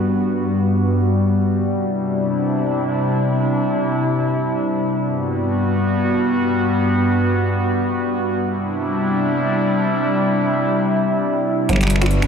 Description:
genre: IDM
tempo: free time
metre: none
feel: none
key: G major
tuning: A4 = 437 Hz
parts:
  - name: warbly tape-like pad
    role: sustained chords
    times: 0.0-12.3 s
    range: G2 to B4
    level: -17 LUFS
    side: equal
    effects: chorus, built-in reverb
  - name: deep acid bass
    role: arpeggios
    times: 11.7-12.3 s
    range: F#3 to F#4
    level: -30 LUFS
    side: right 1 dB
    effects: none
  - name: dark detuned saw bass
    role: bass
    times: 11.7-12.3 s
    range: G1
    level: -17 LUFS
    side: equal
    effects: none
  - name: booming analog drum machine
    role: drums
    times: 11.7-12.3 s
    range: finger snaps, hi-hat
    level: -25 LUFS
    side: right 1 dB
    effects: diffuse ambient delay
  - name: electronic kick drum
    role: drums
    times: 11.7-11.8 s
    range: none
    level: -24 LUFS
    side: equal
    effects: none
room: wet cathedral reverb, RT60 6.4 s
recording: dreamy mix soaked in reverb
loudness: -17 LUFS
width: side -6 dB against mid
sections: 0.0-11.7 A section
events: none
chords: 0.0 Gmaj7; 1.7 Cadd9; 5.0 Gmaj7; 8.4 Cadd9; 11.7 Gmaj7

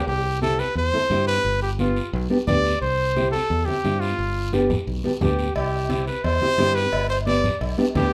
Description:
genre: latin, cumbia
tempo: 175 BPM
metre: 4/4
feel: straight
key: C major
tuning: A4 = 440 Hz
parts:
  - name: clear trumpet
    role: melody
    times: 0.0-8.1 s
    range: F4 to D5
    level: -26 LUFS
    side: equal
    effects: none
  - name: fingered electric bass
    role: bass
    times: 0.1-8.1 s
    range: G1 to G2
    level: -28 LUFS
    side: equal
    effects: none
  - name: guiro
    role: percussion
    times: 0.1-8.1 s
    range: none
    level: -41 LUFS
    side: equal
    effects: none
  - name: nylon-string guitar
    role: accompaniment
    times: 0.4-8.1 s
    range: B3 to A4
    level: -27 LUFS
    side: equal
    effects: none
  - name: congas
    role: percussion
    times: 0.4-8.1 s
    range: none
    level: -31 LUFS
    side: equal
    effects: none
  - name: cowbell and timbales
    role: percussion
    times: 5.6-8.1 s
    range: none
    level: -34 LUFS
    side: equal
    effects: none
room: moderate large studio reverb, RT60 0.9 s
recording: none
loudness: -22 LUFS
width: mono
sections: 0.1-8.1 A section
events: none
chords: 0.1 C; 1.4 G7; 2.8 C; 4.2 G7; 5.6 C; 6.9 G

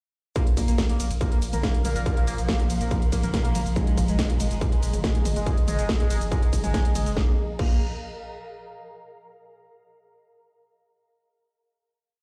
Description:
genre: driving peak-time techno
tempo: 141 BPM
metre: 4/4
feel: straight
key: unclear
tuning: A4 = 440 Hz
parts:
  - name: overdriven synth lead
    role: riff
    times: 0.4-7.8 s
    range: Ab3 to Bb3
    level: -34 LUFS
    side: equal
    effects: phaser, sidechain pumping, delay
  - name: swarming drone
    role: drone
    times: 1.4-7.2 s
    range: Bb2 to F3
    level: -38 LUFS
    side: equal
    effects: built-in reverb, sidechain pumping
  - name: electronic kick drum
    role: drums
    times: 0.4-7.7 s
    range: none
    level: -26 LUFS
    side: equal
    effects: distortion
  - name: techno drum kit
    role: drums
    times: 0.4-7.7 s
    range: crash cymbal, hi-hat, ride cymbal, shaker, snare drum, toms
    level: -34 LUFS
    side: equal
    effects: sidechain pumping on hats, sidechain pumping on perc, sidechain pumping on cymbals, sidechain pumping on toms
  - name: ethereal airy pad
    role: texture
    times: 1.0-8.8 s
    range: Ab4 to Bb5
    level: -40 LUFS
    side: equal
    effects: ensemble chorus, built-in reverb, sidechain pumping
  - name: saturated sub bass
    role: bass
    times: 0.6-7.8 s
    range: Ab1 to Bb1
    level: -30 LUFS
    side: equal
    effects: overdrive, sidechain pumping, low-pass filter
room: digital ambience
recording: played on a big sound system in a bare room, large studio reverb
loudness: -24 LUFS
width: mono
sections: 0.4-7.2 drop; 7.2-8.9 final chord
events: drop 0.4-7.2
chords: 0.4 Bb5; 3.8 Ab5; 7.2 Bb5

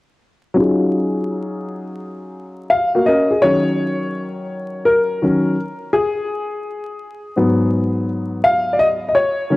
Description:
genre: hip hop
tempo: 84 BPM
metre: 4/4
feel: swing 64% on 16ths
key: Eb minor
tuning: A4 = 441 Hz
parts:
  - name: warm grand piano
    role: solo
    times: 0.5-9.6 s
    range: Ab2 to F5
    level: -16 LUFS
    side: left 1 dB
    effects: low-pass filter, cassette tape
room: light reverb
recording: home recording on cassette, vinyl crackle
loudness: -15 LUFS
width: side -19 dB against mid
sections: 0.6-3.4 A section; 3.4-9.6 B section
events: filter sweep on grand piano 0.6-3.4; grand piano solo 3.4-9.6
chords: 0.6 Ebm11; 3.4 Ebm7; 6.3 Abm7

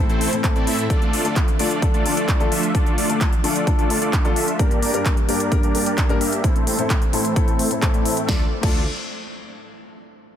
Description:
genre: EDM, festival progressive house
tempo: 130 BPM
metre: 4/4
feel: straight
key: D minor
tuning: A4 = 440 Hz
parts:
  - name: dark baby grand piano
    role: accompaniment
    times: 0.0-8.8 s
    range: G2 to Bb4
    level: -26 LUFS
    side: left 4 dB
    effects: sidechain pumping, ping-pong delay
  - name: lush unison pad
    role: sustained chords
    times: 0.0-8.5 s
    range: E3 to D4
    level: -30 LUFS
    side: right 1 dB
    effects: chorus, phaser, vintage 12-bit sampler grit, sidechain pumping
  - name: detuned saw bass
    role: bass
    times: 0.0-0.9, 8.3-8.8 s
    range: A1 to A2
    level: -28 LUFS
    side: right 1 dB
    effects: tube saturation, sidechain pumping
  - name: supersaw chords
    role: riff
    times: 0.1-8.8 s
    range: A3 to E5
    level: -24 LUFS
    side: equal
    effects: cassette tape, sidechain pumping, low-pass filter, ping-pong delay
  - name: big-room dance drum kit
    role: drums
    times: 0.1-8.7 s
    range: crash cymbal, handclaps, hi-hat, snare drum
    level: -27 LUFS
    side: left 1 dB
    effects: overdrive, studio reverb
  - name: electronic kick drum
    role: drums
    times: 0.4-8.7 s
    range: none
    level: -19 LUFS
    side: equal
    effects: overdrive, studio reverb
room: light reverb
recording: dense, heavily limited modern master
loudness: -17 LUFS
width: side -10 dB against mid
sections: 0.0-8.3 A section; 8.3-10.1 B section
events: filter sweep on supersaw synth 0.0-8.3; filter sweep on analog synth pad 0.0-8.3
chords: 0.0 Am; 0.9 Dm; 4.6 Gm; 6.4 Am; 8.3 Dm

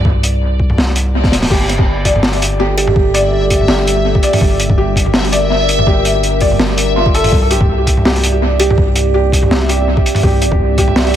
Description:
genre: half-time drum and bass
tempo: 165 BPM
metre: 4/4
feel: swing 56% on 16ths, half-time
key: G dorian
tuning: A4 = 440 Hz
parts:
  - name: long sustained 808-style bass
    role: bass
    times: 0.0-11.2 s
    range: G1 to C2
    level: -16 LUFS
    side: equal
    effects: none
  - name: crunchy breakbeat drum kit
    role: drums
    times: 0.0-11.2 s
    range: crash cymbal, hi-hat, snare drum, toms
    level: -16 LUFS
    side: equal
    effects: dub echo
  - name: backwards swelling texture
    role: texture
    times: 0.0-11.2 s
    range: D5 to E5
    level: -22 LUFS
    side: equal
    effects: built-in reverb
  - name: electronic kick drum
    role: drums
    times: 0.1-10.9 s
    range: none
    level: -14 LUFS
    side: equal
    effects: overdrive
  - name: deep dark ambient pad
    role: sustained chords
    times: 2.5-11.2 s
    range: G3 to D5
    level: -20 LUFS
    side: right 1 dB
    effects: chorus, built-in reverb, sidechain pumping
  - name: felt-muted upright piano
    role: arpeggios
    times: 1.5-11.2 s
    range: F4 to D5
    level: -18 LUFS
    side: left 2 dB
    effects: tape echo
  - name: buzzing kalimba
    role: melody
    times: 2.8-3.1, 8.6-9.0 s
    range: G4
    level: -21 LUFS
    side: right 4 dB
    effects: analog delay
room: light reverb, small room ambience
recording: echo-heavy mix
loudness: -10 LUFS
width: side -10 dB against mid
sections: 0.0-11.2 A section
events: drum fill 1.2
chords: 0.0 Csus2; 1.5 Gm; 7.3 Cadd9

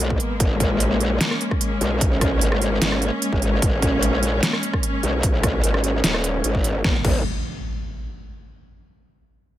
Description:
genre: heavy wobble dubstep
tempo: 149 BPM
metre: 4/4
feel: half-time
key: G# minor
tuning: A4 = 440 Hz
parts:
  - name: rich symphonic string section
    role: sustained chords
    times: 0.0-7.0 s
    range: G#3 to C#4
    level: -25 LUFS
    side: left 1 dB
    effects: stereo widening, sidechain pumping
  - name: growl bass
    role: bass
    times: 0.0-7.2 s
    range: D#1 to B1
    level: -22 LUFS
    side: equal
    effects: chorus, overdrive
  - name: dubstep drum kit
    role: drums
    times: 0.0-7.1 s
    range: crash cymbal, hi-hat, rim click, snare drum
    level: -23 LUFS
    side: right 1 dB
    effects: none
  - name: electronic kick drum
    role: drums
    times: 0.1-7.1 s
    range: none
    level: -22 LUFS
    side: equal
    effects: none
  - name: impact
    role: sound effects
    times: 6.9-8.5 s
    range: none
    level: -29 LUFS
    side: equal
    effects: none
room: little or no reverb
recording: none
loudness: -18 LUFS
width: side -13 dB against mid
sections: 0.0-6.8 A section; 6.8-8.5 B section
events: none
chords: 0.0 G#madd9

